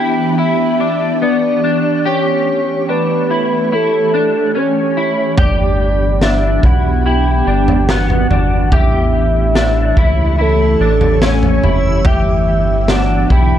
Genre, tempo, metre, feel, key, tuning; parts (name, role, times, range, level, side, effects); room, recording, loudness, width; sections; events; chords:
dream pop; 72 BPM; 4/4; straight; A4 = 439 Hz
soft octave-layered synth lead; melody; 0.0-13.6 s; A4 to G5; -17 LUFS; equal; chorus, tape echo
ethereal airy pad; sustained chords; 0.0-13.6 s; E3 to C#5; -18 LUFS; equal; ensemble chorus, built-in reverb
electric guitar at the edge of break-up; arpeggios; 0.0-13.6 s; B3 to G4; -20 LUFS; left 2 dB; ensemble chorus, tape echo
backwards swelling texture; texture; 1.3-12.3 s; B5 to E6; -36 LUFS; equal; built-in reverb, tape echo
round analog bass; bass; 5.4-13.6 s; F#1 to C#2; -16 LUFS; equal
raw garage drum kit; drums; 5.4-13.5 s; kick drum, snare drum, toms; -16 LUFS; equal
light reverb, studio ambience; dark, warm production; -11 LUFS; side -10 dB against mid
0.0-13.6 A section
0.0 A7; 5.4 G6; 8.7 A7; 12.1 G6